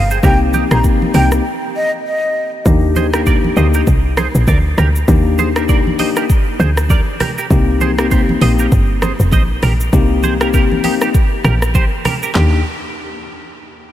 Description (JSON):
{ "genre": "afrobeats", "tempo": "99 BPM", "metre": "4/4", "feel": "swing 58% on 16ths", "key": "Eb major", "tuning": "A4 = 440 Hz", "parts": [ { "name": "breathy mellow silver concert flute", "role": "melody", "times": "0.0-2.5 s", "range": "Eb5 to Bb5", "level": "-20 LUFS", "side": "equal", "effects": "tape echo" }, { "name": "clean electric guitar", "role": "riff", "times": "0.0-12.6 s", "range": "Eb4 to Eb5", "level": "-22 LUFS", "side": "right 5 dB", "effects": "analog chorus, tape echo" }, { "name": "woody log drum bass", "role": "bass", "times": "0.0-12.6 s", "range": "F1 to Eb2", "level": "-15 LUFS", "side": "equal", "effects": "none" }, { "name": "afro-pop drum kit", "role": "drums", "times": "0.1-12.5 s", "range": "handclaps, hi-hat, kick drum, rim click, shaker, snare drum, toms", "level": "-16 LUFS", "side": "equal", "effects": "none" }, { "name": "bell-like tine electric piano", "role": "accompaniment", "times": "0.2-12.6 s", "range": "Bb3 to G4", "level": "-19 LUFS", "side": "left 5 dB", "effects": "none" }, { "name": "congas", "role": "percussion", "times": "0.2-12.6 s", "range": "none", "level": "-24 LUFS", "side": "right 2 dB", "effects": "none" } ], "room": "light reverb", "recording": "none", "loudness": "-11 LUFS", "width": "side -12 dB against mid", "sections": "0.0-2.7 A section; 2.7-12.4 B section; 12.4-13.9 C section", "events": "break 1.4-2.7", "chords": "0.0 Cm7; 2.7 Ebmaj7; 7.5 Cm7; 12.4 Ebmaj7", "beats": "| 0.23 0.84 1.45 2.05 | 2.66 3.26 3.87 4.47 | 5.08 5.69 6.29 6.90 | 7.50 8.11 8.72 9.32 | 9.93 10.54 11.14 11.75 | 12.35" }